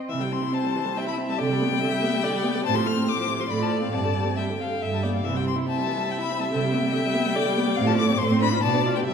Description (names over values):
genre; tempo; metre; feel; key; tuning
quick classical-period movement for string quartet; 142 BPM; 3/4; rubato; C major; A4 = 440 Hz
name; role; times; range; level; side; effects
rich violin; melody; 0.1-9.1 s; E5 to F6; -28 LUFS; left 8 dB; none
rich viola; accompaniment; 0.1-9.1 s; C3 to G4; -26 LUFS; right 1 dB; none
warm cello; bass; 0.1-9.1 s; G2 to C3; -27 LUFS; right 3 dB; none
rich violin; second line; 0.5-9.1 s; C5 to F5; -30 LUFS; left 3 dB; none
room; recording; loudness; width
wet recital hall reverb, RT60 1.9 s; heard from further back in the room; -22 LUFS; side -7 dB against mid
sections
0.1-9.1 A section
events
none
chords
0.1 C; 1.4 G/C; 2.7 F/A; 3.5 Dm7/A; 3.9 Gsus4; 4.8 G; 5.2 C; 6.5 G/C; 7.8 F/A; 8.2 Dm7/A; 8.6 G7/B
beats
| 0.10 0.54 0.97 | 1.40 1.81 2.23 | 2.65 3.08 3.50 | 3.93 4.37 4.81 | 5.25 5.68 6.10 | 6.52 6.94 7.37 | 7.78 8.20 8.63 | 9.07